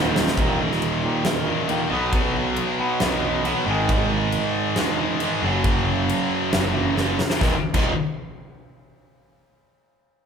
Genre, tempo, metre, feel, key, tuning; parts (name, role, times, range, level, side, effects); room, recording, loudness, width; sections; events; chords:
quiet-loud alternative rock; 136 BPM; 4/4; straight; Eb minor; A4 = 441 Hz
distorted electric guitar; riff; 0.0-7.9 s; Eb2 to B3; -25 LUFS; right 9 dB; overdrive
scooped high-gain guitar; riff; 0.0-7.9 s; Eb2 to B3; -25 LUFS; left 8 dB; distortion
fuzz picked electric bass; bass; 0.0-7.9 s; Eb1 to B1; -27 LUFS; equal; overdrive
huge arena drum kit; drums; 0.2-7.8 s; crash cymbal, kick drum, snare drum; -25 LUFS; equal
twangy electric guitar; arpeggios; 0.4-3.9 s; Eb2 to B3; -29 LUFS; left 2 dB
light reverb; band playing live in one room; -19 LUFS; side -7 dB against mid
0.4-7.4 A section; 7.4-9.2 B section
drum fill 0.0-0.4, 7.0-7.4
0.4 Eb5; 1.9 B5; 3.7 Ab5; 5.4 Gb5; 7.4 Eb5